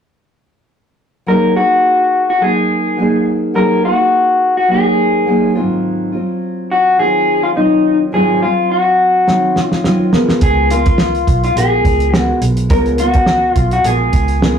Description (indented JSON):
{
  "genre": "indie pop, bedroom pop",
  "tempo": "105 BPM",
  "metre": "4/4",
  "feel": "swing 55% on 16ths",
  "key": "F# major",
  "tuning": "A4 = 438 Hz",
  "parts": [
    { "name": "electric guitar through a small old amp", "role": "melody", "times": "1.3-14.6 s", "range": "D#4 to A#4", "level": "-13 LUFS", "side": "left 2 dB", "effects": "none" },
    { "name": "nylon-string guitar", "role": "accompaniment", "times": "1.3-14.6 s", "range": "G#2 to A#4", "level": "-17 LUFS", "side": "right 1 dB", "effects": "warbly pitch drift" },
    { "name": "cloth-damped thuddy drum kit", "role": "drums", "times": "9.3-14.6 s", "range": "hi-hat, kick drum, snare drum", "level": "-15 LUFS", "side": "right 1 dB", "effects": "none" },
    { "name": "vintage muted fingered electric bass", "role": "bass", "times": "10.4-14.6 s", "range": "A#1 to C#2", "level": "-17 LUFS", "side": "right 1 dB", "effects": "none" }
  ],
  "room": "wet studio reverb, RT60 0.6 s",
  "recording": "rough rehearsal-room recording, tube saturation",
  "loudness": "-11 LUFS",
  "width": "side -7 dB against mid",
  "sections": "1.3-14.6 A section",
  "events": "drum fill 9.3-10.4",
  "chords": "1.3 F#69; 5.6 G#6; 10.1 C#13",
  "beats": "| 1.27 1.84 2.41 2.98 | 3.56 4.13 4.70 5.27 | 5.84 6.42 6.99 7.56 | 8.13 8.70 9.28 9.85 | 10.42 10.99 11.56 12.13 | 12.71 13.28 13.85 14.42"
}